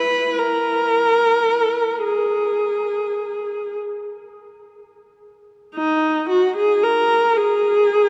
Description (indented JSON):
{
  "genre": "classical, free, expressive piece for unaccompanied viola",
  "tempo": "25-39 BPM (dotted quarters)",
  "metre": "6/8",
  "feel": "rubato",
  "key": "G# minor",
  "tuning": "A4 = 440 Hz",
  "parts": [
    { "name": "warm viola", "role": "solo", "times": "0.0-8.1 s", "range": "D#4 to B4", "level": "-19 LUFS", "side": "equal", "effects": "none" }
  ],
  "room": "wet cathedral reverb, RT60 5.6 s",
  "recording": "dark, warm production",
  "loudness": "-19 LUFS",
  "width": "mono",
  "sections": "0.0-5.8 A section; 5.8-8.1 A section",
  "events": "none",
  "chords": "none"
}